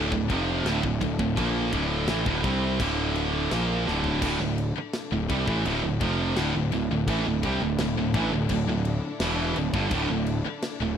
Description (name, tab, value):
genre	heavy metal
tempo	84 BPM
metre	4/4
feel	straight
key	D minor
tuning	A4 = 440 Hz
part	warm studio string section	sustained chords	0.0-11.0 s	D3 to A4	-37 LUFS	left 4 dB	none
part	heavy high-gain guitar	riff	0.0-11.0 s	D2 to C4	-32 LUFS	left 16 dB	distortion
part	tight distorted guitar	riff	0.0-11.0 s	D2 to C4	-28 LUFS	right 8 dB	distortion
part	fuzz picked electric bass	bass	0.0-11.0 s	D1 to C2	-28 LUFS	left 1 dB	overdrive
part	tight metal drum kit	drums	0.1-10.8 s	crash cymbal, kick drum, snare drum, toms	-34 LUFS	left 1 dB	none
room	small room ambience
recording	rough home demo mix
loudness	-23 LUFS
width	side -8 dB against mid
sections	0.0-4.2 A section; 4.2-11.0 B section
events	drum fill 3.9-4.2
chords	0.0 Dm